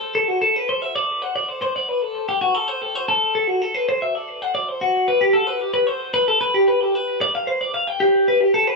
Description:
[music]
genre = rock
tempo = 75 BPM (dotted quarters)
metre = 6/8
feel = straight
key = G major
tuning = A4 = 440 Hz
[part]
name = twelve-string electric guitar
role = solo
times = 0.0-8.8 s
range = F#4 to G5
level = -18 LUFS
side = left 1 dB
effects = tape echo
[sound]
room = light reverb, digital ambience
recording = rough home demo mix, small room ambience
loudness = -18 LUFS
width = side -2 dB against mid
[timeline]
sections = 0.0-4.8 A section; 4.8-8.8 B section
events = none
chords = none

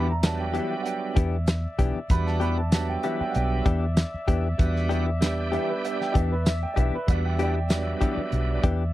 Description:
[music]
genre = straight-eighth soul blues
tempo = 96 BPM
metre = 4/4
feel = straight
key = E minor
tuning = A4 = 440 Hz
[part]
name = warm upright piano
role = second line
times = 0.0-8.6 s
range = B4 to B5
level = -32 LUFS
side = right 4 dB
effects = none
[part]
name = overdriven tonewheel organ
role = accompaniment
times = 0.0-8.6 s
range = F#3 to G4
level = -30 LUFS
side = right 5 dB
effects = slow rotary speaker
[part]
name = mellow horn section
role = sustained chords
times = 0.0-8.9 s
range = D5 to E5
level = -35 LUFS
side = left 2 dB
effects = none
[part]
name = direct-recorded clean electric guitar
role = stabs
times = 0.0-8.8 s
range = E3 to G4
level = -28 LUFS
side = left 5 dB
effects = none
[part]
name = vintage muted fingered electric bass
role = bass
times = 0.0-8.9 s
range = B1 to E2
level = -26 LUFS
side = equal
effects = none
[part]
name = warm soul drum kit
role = drums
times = 0.2-8.8 s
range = hi-hat, kick drum, snare drum, tambourine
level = -23 LUFS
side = equal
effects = none
[sound]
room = little or no reverb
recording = dry, close 1970s-style studio recording, lossy compression artefacts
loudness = -22 LUFS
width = side -15 dB against mid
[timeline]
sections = 0.0-8.9 A section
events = upright piano solo 0.0-8.9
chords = 0.0 Em7

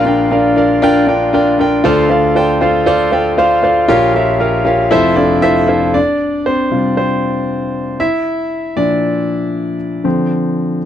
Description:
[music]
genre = pop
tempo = 117 BPM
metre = 4/4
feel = straight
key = unclear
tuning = A4 = 437 Hz
[part]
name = clear concert grand piano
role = solo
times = 0.0-10.9 s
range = F1 to G5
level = -11 LUFS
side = equal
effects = none
[sound]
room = light reverb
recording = dry, close 1970s-style studio recording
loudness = -11 LUFS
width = side -10 dB against mid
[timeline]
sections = 0.0-5.9 A section; 5.9-10.9 B section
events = grand piano solo 5.9-10.9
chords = 0.0 Bb; 1.8 Dm7; 3.9 Bbm6; 4.9 Fmaj7; 5.9 Csus4; 8.0 Bb; 10.0 Dm7

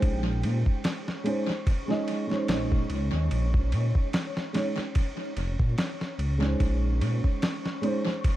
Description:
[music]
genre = trip hop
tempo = 73 BPM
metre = 4/4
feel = swing 56% on 16ths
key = Bb minor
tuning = A4 = 441 Hz
[part]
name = felt-muted upright piano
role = accompaniment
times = 0.0-8.1 s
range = Ab3 to Eb5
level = -30 LUFS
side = right 1 dB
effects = harmonic tremolo, tape echo
[part]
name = dark detuned saw bass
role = bass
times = 0.0-7.2 s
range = F1 to Bb2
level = -26 LUFS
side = equal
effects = none
[part]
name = dusty soul sampler-style drum kit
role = drums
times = 0.0-8.4 s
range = kick drum, ride cymbal, snare drum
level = -28 LUFS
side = equal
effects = tape echo
[part]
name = wind-like tuned noise texture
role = texture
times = 0.0-8.4 s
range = Db4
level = -39 LUFS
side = equal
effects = built-in reverb
[sound]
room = light reverb, digital ambience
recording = echo-heavy mix, vinyl crackle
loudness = -25 LUFS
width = side -14 dB against mid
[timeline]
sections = 0.0-8.4 A section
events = none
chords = 0.0 Bbm11

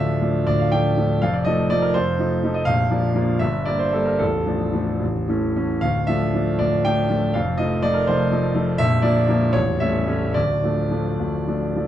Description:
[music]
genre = classical, romantic character piece for solo piano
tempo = 69-85 BPM (dotted quarters)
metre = 6/8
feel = rubato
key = D minor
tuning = A4 = 440 Hz
[part]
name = clear concert grand piano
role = solo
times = 0.0-11.9 s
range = A0 to G5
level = -18 LUFS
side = equal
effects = none
[sound]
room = moderate recital hall reverb, RT60 1.6 s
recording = none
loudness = -18 LUFS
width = side -11 dB against mid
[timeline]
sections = 0.0-11.9 A section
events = none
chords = 0.0 Dm; 1.2 F7; 2.7 Bb; 3.4 Gm; 4.2 Dm/A; 5.0 A; 5.8 Dm; 7.3 F7; 8.8 Bb; 9.5 A7; 10.4 Dm

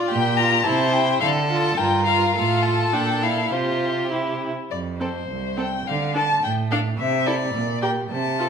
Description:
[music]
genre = quick classical-period movement for string quartet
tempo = 105 BPM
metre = 2/4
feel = rubato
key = F major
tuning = A4 = 441 Hz
[part]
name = rich violin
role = melody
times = 0.0-8.5 s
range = C5 to Bb5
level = -23 LUFS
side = left 5 dB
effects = none
[part]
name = clear violin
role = second line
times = 0.0-8.5 s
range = G4 to C5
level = -27 LUFS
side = left 2 dB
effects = none
[part]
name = rich viola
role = accompaniment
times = 0.0-8.5 s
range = C4 to G4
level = -26 LUFS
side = right 2 dB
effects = none
[part]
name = clear cello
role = bass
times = 0.1-8.5 s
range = C2 to D3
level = -25 LUFS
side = right 5 dB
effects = none
[sound]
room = wet recital hall reverb, RT60 1.4 s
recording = minimal, uncompressed stereo recording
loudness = -19 LUFS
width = side -6 dB against mid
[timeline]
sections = 0.0-4.7 A section; 4.7-8.5 B section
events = none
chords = 0.1 Gm7/Bb; 0.7 C; 1.2 Dm; 1.8 Gm7; 2.4 F/A; 2.9 Bb; 3.5 Csus4; 4.1 C; 4.7 F5; 5.9 D5; 7.0 Am/C (rootless); 7.5 Gm/Bb

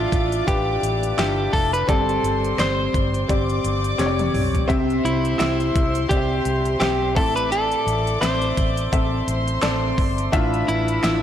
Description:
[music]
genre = piano-driven pop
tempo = 85 BPM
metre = 4/4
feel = swing 56% on 16ths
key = C major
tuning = A4 = 441 Hz
[part]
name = clean electric guitar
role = melody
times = 0.0-11.2 s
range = E4 to C5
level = -23 LUFS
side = equal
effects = none
[part]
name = warm studio violin section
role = second line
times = 0.0-11.2 s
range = B4 to D6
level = -29 LUFS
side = equal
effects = none
[part]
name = warm concert grand piano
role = accompaniment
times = 0.0-11.2 s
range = G2 to F5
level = -24 LUFS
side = left 1 dB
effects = none
[part]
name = vintage muted fingered electric bass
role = bass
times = 0.0-11.2 s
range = F1 to C2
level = -25 LUFS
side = equal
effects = none
[part]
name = pop drum kit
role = drums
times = 0.1-11.2 s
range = hi-hat, kick drum, snare drum, toms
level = -24 LUFS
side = equal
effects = none
[sound]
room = light reverb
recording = blown-out, overdriven recording, overdrive, lossy compression artefacts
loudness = -18 LUFS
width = side -10 dB against mid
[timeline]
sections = 0.0-11.2 A section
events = drum fill 4.0-4.7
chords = 0.0 Dmadd9/A; 1.9 Gsus4; 4.7 C; 7.2 Am; 10.3 Dmadd9/A

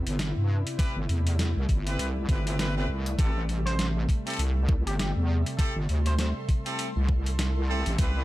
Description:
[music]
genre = glitch hop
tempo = 100 BPM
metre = 4/4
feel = swing 58% on 16ths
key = A minor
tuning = A4 = 445 Hz
[part]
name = warm analog pad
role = sustained chords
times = 0.0-8.2 s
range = C3 to E4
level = -37 LUFS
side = equal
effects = chorus, sidechain pumping
[part]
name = wobble bass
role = bass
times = 0.0-8.2 s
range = G1 to G2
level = -26 LUFS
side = equal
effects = chorus
[part]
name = ethereal airy pad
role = texture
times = 0.0-8.2 s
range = G4 to C6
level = -43 LUFS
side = right 2 dB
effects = ensemble chorus, built-in reverb, sidechain pumping
[part]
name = boom bap sampler-style drum kit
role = drums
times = 0.1-8.1 s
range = hi-hat, snare drum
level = -34 LUFS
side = equal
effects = none
[part]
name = clear horn section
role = stabs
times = 0.8-8.2 s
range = C4 to B4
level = -35 LUFS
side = equal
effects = sidechain pumping, ping-pong delay
[part]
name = electronic kick drum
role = drums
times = 0.8-8.1 s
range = none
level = -25 LUFS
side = equal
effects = overdrive
[part]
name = sync lead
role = melody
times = 3.7-6.3 s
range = G4 to C5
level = -38 LUFS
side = right 1 dB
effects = chorus, ping-pong delay
[sound]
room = little or no reverb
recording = none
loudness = -24 LUFS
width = side -16 dB against mid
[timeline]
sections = 0.0-8.2 A section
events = fade-in on ambient pad 0.0-8.2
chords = 0.0 Cmaj7; 3.2 Am7

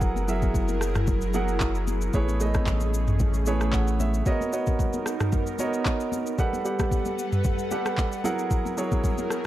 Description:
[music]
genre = amapiano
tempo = 113 BPM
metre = 4/4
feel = swing 55% on 16ths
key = B major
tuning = A4 = 440 Hz
[part]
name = warm concert grand piano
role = accompaniment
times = 0.0-9.5 s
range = F#3 to G#5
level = -28 LUFS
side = right 2 dB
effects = none
[part]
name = airy breathy pad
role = sustained chords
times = 0.0-9.5 s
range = F#3 to F#5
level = -32 LUFS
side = right 1 dB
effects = chorus
[part]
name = warm sub bass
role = bass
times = 0.0-4.2 s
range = F#1 to A1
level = -26 LUFS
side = equal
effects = none
[part]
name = smooth R&B drum kit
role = drums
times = 0.0-9.4 s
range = handclaps, kick drum, rim click, shaker, toms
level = -26 LUFS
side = equal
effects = none
[part]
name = congas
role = percussion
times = 0.2-9.3 s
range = none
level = -36 LUFS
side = left 6 dB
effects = none
[sound]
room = little or no reverb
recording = dark, warm production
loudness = -23 LUFS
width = side -14 dB against mid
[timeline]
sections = 0.0-9.5 A section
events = grand piano fill 3.2-4.3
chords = 0.0 F#9; 2.1 Amaj9; 4.3 Bmaj9; 6.4 Gmaj9; 8.2 F#9

